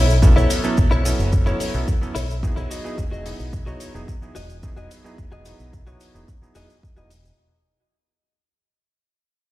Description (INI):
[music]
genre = nu-disco, nu disco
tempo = 109 BPM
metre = 4/4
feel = straight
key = unclear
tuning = A4 = 438 Hz
[part]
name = direct-recorded clean electric guitar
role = riff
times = 0.0-7.3 s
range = E4 to D#5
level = -28 LUFS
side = left 2 dB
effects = wide subtle chorus, low-pass filter, ping-pong delay
[part]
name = fingered electric bass with an envelope filter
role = bass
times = 0.0-7.3 s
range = E1 to B1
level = -22 LUFS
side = equal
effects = sidechain pumping
[part]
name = cabasa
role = percussion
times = 0.1-7.4 s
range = none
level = -35 LUFS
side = right 3 dB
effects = none
[part]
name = bright electric grand piano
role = accompaniment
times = 0.2-7.1 s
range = F#3 to C#5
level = -28 LUFS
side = right 2 dB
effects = sidechain pumping, low-pass filter, ping-pong delay
[part]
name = electronic kick drum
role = drums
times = 0.2-6.9 s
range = none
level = -18 LUFS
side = equal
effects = none
[part]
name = hi-hat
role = drums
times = 0.5-7.2 s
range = none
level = -32 LUFS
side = left 6 dB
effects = none
[sound]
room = light reverb, studio reverb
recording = played on a big sound system in a bare room, stone room reverb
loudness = -18 LUFS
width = side -16 dB against mid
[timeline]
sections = 0.0-7.4 A section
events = fade-out 0.0-7.4; filter sweep on electric grand piano 0.0-7.4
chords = 0.0 B9sus4; 2.7 Emaj9